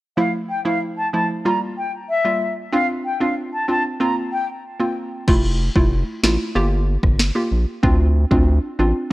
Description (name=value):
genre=dancehall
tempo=94 BPM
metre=4/4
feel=straight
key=unclear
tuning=A4 = 440 Hz
part: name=mellow concert flute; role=melody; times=0.2-4.5 s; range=E5 to Bb5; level=-22 LUFS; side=left 1 dB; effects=ping-pong delay
part: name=hollow square pluck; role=accompaniment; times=0.2-8.9 s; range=F3 to G4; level=-22 LUFS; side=right 1 dB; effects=chorus
part: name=round analog bass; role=bass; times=5.3-8.9 s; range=F1 to D2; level=-18 LUFS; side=equal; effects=none
part: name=afro-pop drum kit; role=drums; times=5.3-8.5 s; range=crash cymbal, kick drum, rim click, snare drum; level=-18 LUFS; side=equal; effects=none
room=light reverb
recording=worn, warbling old tape, cassette tape, warbly pitch drift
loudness=-17 LUFS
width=side -18 dB against mid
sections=0.2-5.3 A section; 5.3-9.1 B section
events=none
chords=0.2 Fmaj7; 1.4 Gm7; 2.7 Dm7; 4.0 C7sus4; 5.3 Fmaj7; 6.6 Gm7; 7.8 Dm7